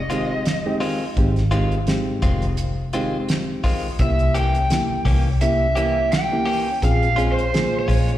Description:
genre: straight-eighth soul blues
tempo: 85 BPM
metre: 4/4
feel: swing 56% on 16ths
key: F minor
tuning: A4 = 439 Hz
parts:
  - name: lead guitar through a small cranked amp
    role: melody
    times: 0.0-8.2 s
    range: C5 to G5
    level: -23 LUFS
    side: right 1 dB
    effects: overdrive, plate reverb, slapback echo
  - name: vintage muted fingered electric bass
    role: bass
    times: 0.0-8.2 s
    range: F1 to C2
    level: -21 LUFS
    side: equal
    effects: none
  - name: bright reed electric piano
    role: accompaniment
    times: 0.1-8.2 s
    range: Ab3 to Ab4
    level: -25 LUFS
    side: right 2 dB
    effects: plate reverb, slapback echo
  - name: direct-recorded clean electric guitar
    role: stabs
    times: 0.1-8.1 s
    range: Eb3 to G4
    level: -28 LUFS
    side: left 4 dB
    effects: plate reverb, slapback echo, analog delay
  - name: damped 70s drum kit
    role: drums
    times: 0.1-8.2 s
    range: hi-hat, kick drum, snare drum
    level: -23 LUFS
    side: equal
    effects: slapback echo
room: light reverb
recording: live gig heard through the venue's PA, recital hall reverb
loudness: -18 LUFS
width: side -13 dB against mid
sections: 0.0-8.2 A section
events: none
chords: 0.0 Fm7; 4.0 C7b9; 6.8 Bbm7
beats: 0.46 | 1.17 1.88 2.58 3.29 | 4.00 4.71 5.41 6.12 | 6.83 7.53

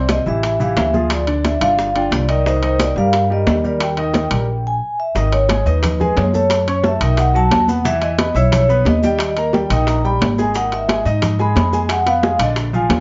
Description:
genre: Afro-Cuban jazz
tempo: 178 BPM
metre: 4/4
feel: straight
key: G# minor from 5.2 s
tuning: A4 = 441 Hz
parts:
  - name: vibraphone with medium mallets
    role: melody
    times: 0.0-13.0 s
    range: B4 to B5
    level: -22 LUFS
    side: equal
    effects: none
  - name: warm baby grand piano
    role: accompaniment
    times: 0.0-13.0 s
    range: C3 to E6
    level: -24 LUFS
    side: equal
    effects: none
  - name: upright bass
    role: bass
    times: 0.0-13.0 s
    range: G1 to G#2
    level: -21 LUFS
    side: equal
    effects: none
  - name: bongos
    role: percussion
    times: 0.1-13.0 s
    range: none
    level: -29 LUFS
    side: equal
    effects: none
  - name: congas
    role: percussion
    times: 0.1-13.0 s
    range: none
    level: -25 LUFS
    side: equal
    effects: none
  - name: maracas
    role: percussion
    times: 0.1-13.0 s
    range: none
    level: -42 LUFS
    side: equal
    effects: none
  - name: timbales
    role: percussion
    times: 0.1-13.0 s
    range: none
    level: -27 LUFS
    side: equal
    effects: none
room: moderate club reverb, RT60 0.6 s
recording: nothing above 7.5 kHz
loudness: -17 LUFS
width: mono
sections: 0.0-5.2 A section; 5.2-13.0 B section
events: stop 4.5-5.2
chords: 0.4 A5; 1.1 Ddim; 1.8 G5; 2.5 Cm7; 3.8 Eb; 5.2 G#m7; 6.5 F#m7; 7.2 B7; 7.9 E5; 9.2 D#; 10.6 G#m; 11.9 Fdim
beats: 0.09 0.43 0.77 | 1.11 1.44 1.78 2.12 | 2.46 2.79 3.13 3.47 | 3.81 4.14 4.48 4.82 | 5.16 5.49 5.83 6.17 | 6.51 6.84 7.18 7.52 | 7.85 8.19 8.53 8.87 | 9.20 9.54 9.88 10.21 | 10.55 10.89 11.22 11.56 | 11.90 12.24 12.57 12.91

